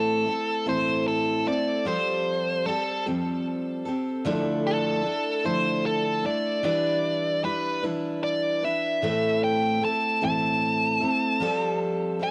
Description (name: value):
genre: rock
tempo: 50 BPM (dotted quarters)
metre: 6/8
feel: straight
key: A minor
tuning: A4 = 440 Hz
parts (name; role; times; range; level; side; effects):
- nasal lead guitar with a parked wah; melody; 0.0-12.3 s; A4 to A5; -28 LUFS; equal; overdrive, cassette tape
- picked steel-string acoustic guitar; accompaniment; 0.0-12.3 s; A2 to B4; -28 LUFS; equal; cassette tape
room: small room ambience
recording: home recording on cassette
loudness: -26 LUFS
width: mono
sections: 0.0-12.3 A section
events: lead electric guitar solo 0.0-12.3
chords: 0.0 Am; 1.9 Fadd9; 4.3 Dmadd9; 6.6 Em7; 9.0 Am; 11.4 Fadd9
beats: 0.67 | 1.86 3.06 | 4.25 5.45 | 6.64 7.83 | 9.03 10.22 | 11.41